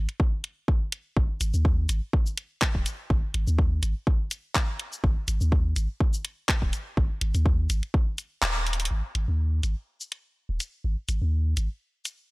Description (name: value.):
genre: minimal techno.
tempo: 124 BPM.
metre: 4/4.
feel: swing 54% on 16ths.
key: unclear.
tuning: A4 = 440 Hz.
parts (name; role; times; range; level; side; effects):
punchy sub bass; bass; 0.0-11.7 s; D#1 to D#2; -25 LUFS; equal; sidechain pumping.
house drum kit; drums; 0.1-12.2 s; cabasa, handclaps, hi-hat; -28 LUFS; equal; none.
electronic kick drum; drums; 0.2-8.0 s; none; -23 LUFS; equal; none.
room: little or no reverb.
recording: dry, gritty hardware recording, transformer saturation.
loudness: -24 LUFS.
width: side -24 dB against mid.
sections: 0.0-8.9 A section; 8.9-12.3 B section.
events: kick drops out 8.4-8.9; band accent 8.4; drum fill 8.7.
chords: none.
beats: 0.20 0.68 | 1.17 1.65 2.13 2.62 | 3.10 3.59 4.07 4.55 | 5.04 5.52 6.00 6.49 | 6.97 7.46 7.94 8.42 | 8.91 9.39 9.88 10.36 | 10.84 11.33 11.81.